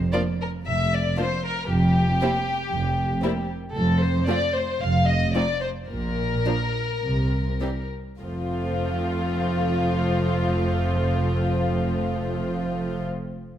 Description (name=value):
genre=quick classical-period movement for symphony orchestra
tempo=98-118 BPM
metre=4/4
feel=straight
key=F major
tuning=A4 = 440 Hz
part: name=dark chamber cello section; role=bass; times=0.0-13.1 s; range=F2 to C3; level=-27 LUFS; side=right 1 dB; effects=none
part: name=dark studio double bass section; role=bass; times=0.0-13.1 s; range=F1 to C2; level=-27 LUFS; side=right 2 dB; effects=none
part: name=warm chamber violin section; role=melody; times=0.1-13.1 s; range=F4 to F5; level=-28 LUFS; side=left 3 dB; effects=none
part: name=dark chamber violin section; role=second line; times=0.1-13.0 s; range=C4 to G4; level=-32 LUFS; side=left 5 dB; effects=none
part: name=warm chamber viola section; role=accompaniment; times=0.1-13.1 s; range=E3 to Bb3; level=-30 LUFS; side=right 1 dB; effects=none
room=moderate scoring stage reverb, RT60 1.6 s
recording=none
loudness=-22 LUFS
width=side -10 dB against mid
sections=0.0-8.2 A section; 8.2-13.0 B section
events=slowing down 2.7-8.2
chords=0.0 Bb/F (rootless); 1.7 N.C.; 3.8 F; 5.9 N.C.; 7.0 C7(no3); 8.2 F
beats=0.14 0.66 1.18 | 1.70 2.21 2.72 3.23 | 3.75 4.28 4.81 5.35 | 5.90 6.46 7.03 7.61 | 8.22 8.81 9.40 9.99 | 10.59 11.19 11.78 12.38